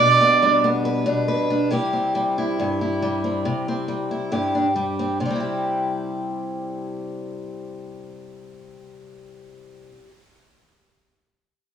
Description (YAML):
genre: highlife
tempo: 137 BPM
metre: 4/4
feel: straight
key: C major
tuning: A4 = 440 Hz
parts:
  - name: clear trumpet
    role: melody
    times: 0.0-0.7 s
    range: D5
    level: -15 LUFS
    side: right 5 dB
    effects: cassette tape, plate reverb
  - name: picked steel-string acoustic guitar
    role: accompaniment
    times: 0.0-10.1 s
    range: G2 to B4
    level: -23 LUFS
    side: left 1 dB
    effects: cassette tape, plate reverb
room: moderate booth ambience, RT60 0.2 s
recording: home recording on cassette, studio ambience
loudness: -20 LUFS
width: side -8 dB against mid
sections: 0.0-1.7 A section; 1.7-5.2 B section; 5.2-8.7 C section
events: none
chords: 0.0 G/B; 1.7 C